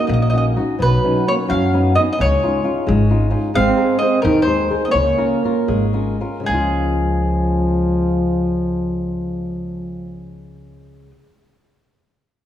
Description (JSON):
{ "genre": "italian folk, Italian serenade", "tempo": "74-88 BPM (dotted quarters)", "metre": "6/8", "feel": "rubato", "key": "Db major", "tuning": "A4 = 440 Hz", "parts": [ { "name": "mandolin", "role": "melody", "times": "0.0-11.1 s", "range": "Ab4 to F5", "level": "-21 LUFS", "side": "equal", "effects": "none" }, { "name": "mellow French horn", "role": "second line", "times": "0.0-10.4 s", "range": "Eb3 to Db4", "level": "-21 LUFS", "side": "right 2 dB", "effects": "none" }, { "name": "flamenco guitar", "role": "accompaniment", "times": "0.0-11.1 s", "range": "Cb3 to C5", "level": "-22 LUFS", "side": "left 2 dB", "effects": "none" }, { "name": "upright bass", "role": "bass", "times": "0.1-11.1 s", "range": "Ab1 to Gb2", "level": "-20 LUFS", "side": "equal", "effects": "none" } ], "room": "wet scoring stage reverb, RT60 1.6 s", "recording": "small room ambience", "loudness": "-15 LUFS", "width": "side -10 dB against mid", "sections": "0.0-6.5 A section; 6.5-9.7 B section", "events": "slowing down 3.6-6.5", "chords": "0.0 Ebm7; 0.8 Cbadd9; 2.2 Dbadd9; 3.6 Abadd9; 4.9 Db6" }